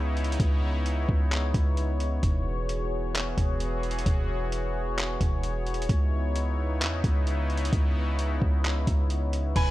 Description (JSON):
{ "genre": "hip hop, atmospheric cloud-rap", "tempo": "131 BPM", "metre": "4/4", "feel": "half-time", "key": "unclear", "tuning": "A4 = 443 Hz", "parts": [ { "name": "sweeping resonant pad", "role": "sustained chords", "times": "0.0-9.7 s", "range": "C#3 to C#5", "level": "-32 LUFS", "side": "left 1 dB", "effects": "chorus, sidechain pumping" }, { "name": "warm 808-style bass", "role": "bass", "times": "0.0-9.7 s", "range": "E1 to E2", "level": "-27 LUFS", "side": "equal", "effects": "none" }, { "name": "trip hop sampler-style drum kit", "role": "drums", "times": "0.2-9.7 s", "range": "crash cymbal, handclaps, hi-hat, kick drum", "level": "-27 LUFS", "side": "equal", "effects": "none" }, { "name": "clean electric guitar", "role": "melody", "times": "9.6-9.7 s", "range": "B4", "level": "-28 LUFS", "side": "right 1 dB", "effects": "analog chorus" }, { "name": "concert harp", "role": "arpeggios", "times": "9.6-9.7 s", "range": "G#5", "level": "-32 LUFS", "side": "right 2 dB", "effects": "none" } ], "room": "digital ambience", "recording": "none", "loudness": "-24 LUFS", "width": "side -16 dB against mid", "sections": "0.0-9.6 A section", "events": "none", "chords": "0.0 C#m7; 2.2 E6; 5.9 C#m7", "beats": "| 0.40 0.86 1.31 1.77 | 2.23 2.69 3.15 3.60 | 4.06 4.52 4.98 5.44 | 5.89 6.35 6.81 7.27 | 7.73 8.18 8.64 9.10 | 9.56" }